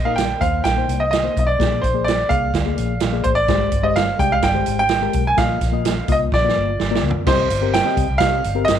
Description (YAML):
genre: uptempo 1960s-style soul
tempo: 127 BPM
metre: 4/4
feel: straight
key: unclear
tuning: A4 = 440 Hz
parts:
  - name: bright grand piano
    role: melody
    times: 0.0-8.7 s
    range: C5 to Ab5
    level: -19 LUFS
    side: right 2 dB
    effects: none
  - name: vintage muted fingered electric bass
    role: bass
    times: 0.0-8.8 s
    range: G1 to C3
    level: -23 LUFS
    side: left 1 dB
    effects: none
  - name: reed electric piano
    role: accompaniment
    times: 0.1-8.7 s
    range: Ab3 to Eb5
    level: -25 LUFS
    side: left 17 dB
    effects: overdrive, spring reverb
  - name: swinging big-band drum kit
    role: drums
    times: 0.2-8.8 s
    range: crash cymbal, hi-hat, kick drum, snare drum, toms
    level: -22 LUFS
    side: right 3 dB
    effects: none
room: small room ambience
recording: 1960s-style stereo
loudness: -16 LUFS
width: side -9 dB against mid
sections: 0.0-7.3 A section; 7.3-8.8 B section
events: drum fill 6.3-7.3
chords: 0.0 Cm7; 1.6 Bb7; 3.5 Abmaj7; 5.4 Bbsus4; 6.3 Bb; 7.3 Cm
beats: 0.18 0.65 1.12 | 1.59 2.07 2.54 3.01 | 3.49 3.96 4.43 4.90 | 5.38 5.85 6.32 6.79 | 7.26 7.73 8.20 8.67